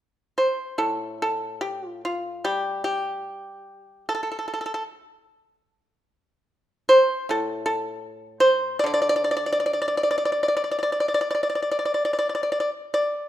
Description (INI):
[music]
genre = chinese traditional, Chinese solo plucked strings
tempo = 75 BPM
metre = 4/4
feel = uneven beats, rubato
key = D yu mode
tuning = A4 = 441 Hz
[part]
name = pipa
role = solo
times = 0.4-13.3 s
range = A2 to D5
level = -22 LUFS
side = equal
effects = none
[sound]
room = light reverb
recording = minimal, uncompressed stereo recording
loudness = -22 LUFS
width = side -12 dB against mid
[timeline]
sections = 0.8-13.3 A section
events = none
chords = none